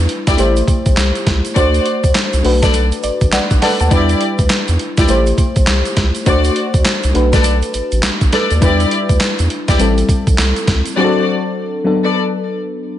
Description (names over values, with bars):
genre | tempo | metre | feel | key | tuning
R&B, new jack swing | 102 BPM | 4/4 | swing 62% on 16ths | unclear | A4 = 444 Hz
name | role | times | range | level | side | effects
mellow FM electric piano | accompaniment | 0.0-13.0 s | F#3 to A5 | -18 LUFS | left 2 dB | chorus
round analog bass | bass | 0.0-10.8 s | A1 to E2 | -16 LUFS | equal | none
boom bap sampler-style drum kit | drums | 0.1-11.0 s | handclaps, hi-hat, kick drum, snare drum | -16 LUFS | equal | gated reverb
dark studio string section | stabs | 0.3-12.2 s | E4 to D5 | -19 LUFS | left 1 dB | digital delay
tube shaker | percussion | 0.3-11.0 s | none | -32 LUFS | right 9 dB | none
room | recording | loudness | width
digital ambience | nothing above 10.9 kHz | -12 LUFS | side -12 dB against mid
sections
0.0-13.0 A section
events
FM electric piano fill 2.7-3.9; break 11.0-13.0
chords
0.4 Am7; 1.6 D7; 2.4 Bm7; 3.9 Em7; 5.1 Am7; 6.3 D7; 7.1 Bm7; 8.6 Em7; 9.8 Am7; 11.0 D7; 11.9 Bm7